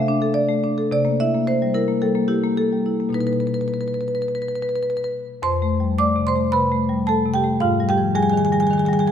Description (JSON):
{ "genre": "classical, contemporary piece for solo marimba", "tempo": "108 BPM", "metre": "4/4", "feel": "uneven beats", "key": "unclear", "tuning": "A4 = 439 Hz", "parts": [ { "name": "marimba with medium mallets", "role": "solo", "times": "0.0-9.1 s", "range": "F2 to D6", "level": "-18 LUFS", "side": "left 1 dB", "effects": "none" } ], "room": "moderate scoring stage reverb, RT60 2.0 s", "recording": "none", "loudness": "-18 LUFS", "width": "side -8 dB against mid", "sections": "0.0-5.4 A section; 5.4-9.1 B section", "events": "none", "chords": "0.0 D5/C; 0.9 C7; 3.1 Bmaj7; 5.4 F; 7.6 Ab5" }